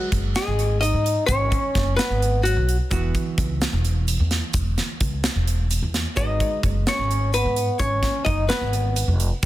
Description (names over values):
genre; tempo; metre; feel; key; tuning
progressive instrumental, band music in an uneven meter; 258 BPM (eighths); 7/8; straight; unclear; A4 = 439 Hz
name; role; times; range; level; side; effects
archtop guitar, miked and amplified; melody; 0.0-2.8, 6.2-9.2 s; Gb4 to Eb5; -25 LUFS; left 2 dB; ping-pong delay
warm trombone; second line; 0.0-2.8, 6.2-9.2 s; Gb3 to Eb4; -28 LUFS; right 2 dB; ping-pong delay
archtop guitar, miked and amplified; accompaniment; 0.0-9.5 s; E3 to Cb5; -33 LUFS; right 4 dB; none
upright bass; bass; 0.1-9.5 s; E1 to Ab2; -22 LUFS; equal; none
tight metal drum kit; drums; 0.1-9.5 s; hi-hat, kick drum, snare drum; -26 LUFS; equal; none
tube shaker; percussion; 0.4-9.2 s; none; -36 LUFS; left 8 dB; none
room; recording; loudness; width
light reverb; dense, heavily limited modern master; -19 LUFS; side -15 dB against mid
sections
0.0-9.5 A section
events
none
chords
0.0 Abm7; 2.9 Esus2; 6.2 Abm7